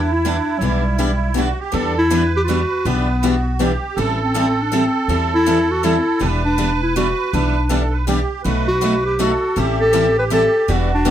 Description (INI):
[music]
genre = acoustic string swing (jazz manouche)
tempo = 161 BPM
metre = 3/4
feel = swing 61% on 8ths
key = E minor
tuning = A4 = 445 Hz
[part]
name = breathy clarinet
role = melody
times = 0.0-11.1 s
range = F#3 to B4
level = -18 LUFS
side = left 1 dB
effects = none
[part]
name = musette accordion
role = second line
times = 0.0-11.1 s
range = E4 to B4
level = -23 LUFS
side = right 8 dB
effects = none
[part]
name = upright bass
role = bass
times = 0.0-11.1 s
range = E1 to E2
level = -21 LUFS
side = equal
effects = none
[part]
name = picked acoustic archtop guitar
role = accompaniment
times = 0.2-11.1 s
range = B2 to A4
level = -23 LUFS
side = left 8 dB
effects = none
[part]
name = picked steel-string acoustic guitar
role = accompaniment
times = 0.2-11.1 s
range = B2 to B4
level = -24 LUFS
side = right 5 dB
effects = none
[sound]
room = moderate studio reverb, RT60 0.6 s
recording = faint mains hum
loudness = -15 LUFS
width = side -10 dB against mid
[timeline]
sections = 0.0-11.1 A section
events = none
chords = 0.0 Em9; 4.0 Am7; 6.2 Em7; 8.4 B7; 9.6 Am7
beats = 0.24 | 0.61 0.99 1.36 | 1.73 2.11 2.48 | 2.85 3.23 3.60 | 3.97 4.35 4.72 | 5.09 5.46 5.84 | 6.21 6.58 6.96 | 7.33 7.70 8.08 | 8.45 8.82 9.20 | 9.57 9.94 10.31 | 10.69 11.06